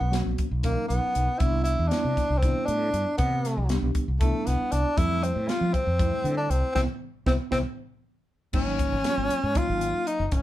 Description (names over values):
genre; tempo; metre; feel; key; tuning
electric jazz fusion; 236 BPM (eighths); 7/8; straight; C major; A4 = 440 Hz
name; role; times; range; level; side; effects
breathy tenor saxophone; melody; 0.0-10.4 s; A3 to F4; -27 LUFS; equal; none
tine electric piano; accompaniment; 0.0-10.2 s; F#3 to A#4; -33 LUFS; equal; overdrive, medium stereo tremolo
mellow fretless electric bass; bass; 0.0-10.4 s; Gb1 to F3; -27 LUFS; equal; none
crisp fusion drum kit; drums; 0.1-10.4 s; crash cymbal, hi-hat, kick drum, snare drum; -29 LUFS; equal; none
room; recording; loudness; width
moderate studio reverb, RT60 0.6 s; band playing live in one room; -23 LUFS; side -14 dB against mid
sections
0.0-8.5 A section; 8.5-10.4 B section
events
band accent 6.8-8.5; drum fill 7.8-8.5; tine electric piano fill 7.8-8.5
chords
0.0 Bmaj9; 1.4 Cmaj9; 5.0 Fmaj9; 6.8 Cmaj7; 7.8 N.C.; 8.5 Ab9sus4